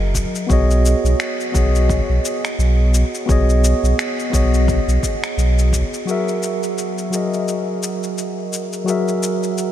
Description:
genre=sunset chillout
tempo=86 BPM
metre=4/4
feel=swing 57% on 16ths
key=B major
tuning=A4 = 440 Hz
part: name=mellow tine electric piano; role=accompaniment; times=0.0-9.7 s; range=F#3 to E5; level=-20 LUFS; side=moving between left 4 dB and right 5 dB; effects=auto-pan, ping-pong delay
part: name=warm sub bass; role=bass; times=0.0-5.8 s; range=F#1 to B1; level=-15 LUFS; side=equal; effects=none
part: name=electronic kick drum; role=drums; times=0.1-5.9 s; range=none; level=-22 LUFS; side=equal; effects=overdrive, studio reverb
part: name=electronic cabasa and finger snaps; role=drums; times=0.2-9.7 s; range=none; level=-27 LUFS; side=left 2 dB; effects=studio reverb
room=light reverb, digital ambience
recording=none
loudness=-16 LUFS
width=side -11 dB against mid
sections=0.0-6.1 A section; 6.1-9.7 B section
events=none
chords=0.5 B6; 6.1 F#7

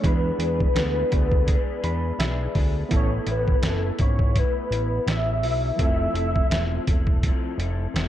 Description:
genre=indie pop, bedroom pop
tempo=83 BPM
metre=4/4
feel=swing 55% on 16ths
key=unclear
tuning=A4 = 440 Hz
part: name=soft octave-layered synth lead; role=melody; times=0.0-7.2 s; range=A4 to E5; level=-27 LUFS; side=left 1 dB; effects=ensemble chorus, ping-pong delay
part: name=bright reed electric piano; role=accompaniment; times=0.0-8.1 s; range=F3 to B5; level=-33 LUFS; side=right 6 dB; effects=fast tremolo, cassette tape
part: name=electric guitar through a small old amp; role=accompaniment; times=0.0-8.1 s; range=A2 to A4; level=-33 LUFS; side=left 7 dB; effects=ensemble chorus, vibrato effect
part: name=fat analog bass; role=bass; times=0.0-8.1 s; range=E1 to E2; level=-26 LUFS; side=equal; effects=none
part: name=lo-fi sampler-style drum kit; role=drums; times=0.0-8.1 s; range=hi-hat, kick drum, snare drum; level=-23 LUFS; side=equal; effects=none
room=digital ambience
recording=dark, warm production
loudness=-20 LUFS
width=side -12 dB against mid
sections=0.0-8.1 A section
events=reed electric piano fill 1.5-2.9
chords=0.0 E7; 2.9 Asus2; 5.8 Fmaj7

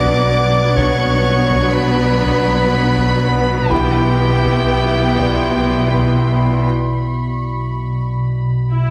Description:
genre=cinematic, suspense film score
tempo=61 BPM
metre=3/4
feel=straight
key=unclear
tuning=A4 = 440 Hz
part: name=clear chamber violin section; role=melody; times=0.0-6.7 s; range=G5 to D6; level=-24 LUFS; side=equal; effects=none
part: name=rich studio violin section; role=second line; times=0.0-6.7 s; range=B3 to E4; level=-26 LUFS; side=equal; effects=none
part: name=warm clarinet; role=second line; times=0.0-6.4 s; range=G4 to D5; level=-24 LUFS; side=equal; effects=none
part: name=clear studio viola section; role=accompaniment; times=0.0-8.9 s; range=E3 to E4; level=-26 LUFS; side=equal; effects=none
part: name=glass harmonica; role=sustained chords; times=0.0-6.7 s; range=B3 to F#5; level=-27 LUFS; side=equal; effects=none
part: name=rich chamber double bass section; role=bass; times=0.0-6.6 s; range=B1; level=-25 LUFS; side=equal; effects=none
part: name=warm symphonic cello section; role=bass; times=0.0-6.7 s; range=B2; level=-24 LUFS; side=equal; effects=none
part: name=metallic inharmonic drone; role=drone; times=0.0-8.9 s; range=B1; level=-21 LUFS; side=equal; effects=chorus, built-in reverb
part: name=taiko ensemble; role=drums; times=0.0-6.7 s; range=none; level=-29 LUFS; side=equal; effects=none
part: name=felt-muted upright piano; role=texture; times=0.0-8.9 s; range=B4 to A#6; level=-32 LUFS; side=equal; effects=none
part: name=rich studio violin section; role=texture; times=0.0-8.9 s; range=B5 to A6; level=-31 LUFS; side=equal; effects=none
part: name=mellow French horn section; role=sustained chords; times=0.8-4.1 s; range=E3 to E4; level=-27 LUFS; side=equal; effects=none
room=wet scoring stage reverb, RT60 1.5 s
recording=heavily compressed radio sound, multiband compression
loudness=-16 LUFS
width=mono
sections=0.0-8.9 A section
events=break 6.7-8.9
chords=0.0 Bmadd9; 3.7 Em/B

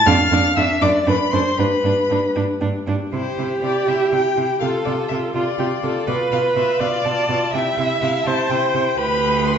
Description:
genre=quick classical-period movement for string quartet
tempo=81 BPM (dotted quarters)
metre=6/8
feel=straight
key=C major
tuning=A4 = 440 Hz
part: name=rich violin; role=melody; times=0.0-9.6 s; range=C5 to F6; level=-24 LUFS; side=left 6 dB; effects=none
part: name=warm violin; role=second line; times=0.0-9.6 s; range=E4 to F5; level=-23 LUFS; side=left 1 dB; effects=none
part: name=rich viola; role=accompaniment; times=0.1-9.6 s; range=D4 to E5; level=-20 LUFS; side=right 2 dB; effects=none
part: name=clear cello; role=bass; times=0.1-9.6 s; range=D2 to C3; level=-23 LUFS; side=right 4 dB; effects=none
room=wet recital hall reverb, RT60 1.2 s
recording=recorded in a church or concert hall, nothing above 7.8 kHz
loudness=-17 LUFS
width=side -8 dB against mid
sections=0.0-3.1 A section; 3.1-9.6 B section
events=none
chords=0.1 Dm/F; 0.8 D/F#; 1.6 G; 3.1 C; 4.6 Dm7/C; 6.1 Bm7b5; 7.5 C; 9.0 G/D

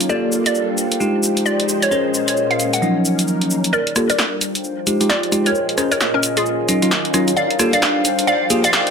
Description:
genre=UK garage, two-step garage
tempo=132 BPM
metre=4/4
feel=swing 61% on 16ths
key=G phrygian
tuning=A4 = 440 Hz
part: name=hollow square pluck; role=melody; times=0.0-8.9 s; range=Db4 to F#5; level=-20 LUFS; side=equal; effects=chorus, ping-pong delay
part: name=soft string machine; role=sustained chords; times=0.0-8.9 s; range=Bb2 to C5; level=-26 LUFS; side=equal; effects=phaser, ensemble chorus
part: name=bell-like tine electric piano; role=stabs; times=0.0-8.6 s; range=F3 to C5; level=-19 LUFS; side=equal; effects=low-pass filter, ping-pong delay
part: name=punchy analog drum machine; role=drums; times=0.0-8.9 s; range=cabasa, hi-hat, rim click, snare drum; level=-20 LUFS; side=equal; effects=high-pass filter on perc, high-pass filter on hats, high-pass filter on snare, high-pass filter on room
part: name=warbly tape-like pad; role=texture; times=0.0-8.9 s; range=D4 to Ab5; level=-25 LUFS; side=left 1 dB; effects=chorus, built-in reverb
room=moderate plate reverb, RT60 1.2 s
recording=none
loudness=-15 LUFS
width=side -6 dB against mid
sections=0.0-3.7 A section; 3.7-8.9 B section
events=filter sweep on tine electric piano 0.0-3.7, 3.7-8.9; build-up 3.7-8.9; filter sweep on string machine 3.7-8.9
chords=0.1 Gm9; 1.0 Fm9; 1.9 Bbm9; 2.8 Ebm9; 3.7 Gm9; 4.6 Fm9; 5.5 Bbm9; 6.5 Ebm9; 7.4 Gm9; 8.3 Fm9

